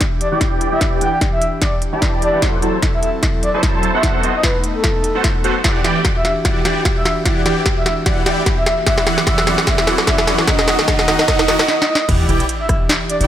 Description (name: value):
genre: future bass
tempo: 149 BPM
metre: 4/4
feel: swing 55% on 16ths, half-time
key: E minor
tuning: A4 = 441 Hz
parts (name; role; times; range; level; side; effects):
- airy breathy pad; sustained chords; 0.0-13.3 s; E3 to A4; -27 LUFS; equal; chorus, sidechain pumping
- electronic kick drum; drums; 0.0-12.8 s; none; -19 LUFS; equal; none
- trap drum kit; drums; 0.0-13.3 s; crash cymbal, hi-hat, rim click, snare drum; -19 LUFS; equal; none
- breathy flute-like synth lead; melody; 0.2-13.3 s; A4 to G5; -22 LUFS; equal; chorus, sidechain pumping, dub echo
- supersaw chords; riff; 0.3-13.3 s; D#3 to A5; -20 LUFS; right 1 dB; phaser, sidechain pumping, low-pass filter
- long sustained 808-style bass; bass; 0.3-13.3 s; E1 to F#2; -28 LUFS; equal; none
- riser and sub drop; sound effects; 7.9-13.3 s; none; -25 LUFS; equal; none
room: light reverb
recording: none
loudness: -14 LUFS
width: side -11 dB against mid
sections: 0.0-12.1 A section; 12.1-13.3 B section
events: build-up 0.0-12.1; drum fill 0.0-11.7, 11.7-12.1; filter sweep on supersaw synth 0.0-12.1; riser 7.9-11.7; drop 12.1-13.3; impact 12.1-13.3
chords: 0.0 Em7; 2.4 F#m7b5; 4.0 B7b9; 5.6 Em9; 8.9 F#m7b5; 10.5 B7; 12.1 Em9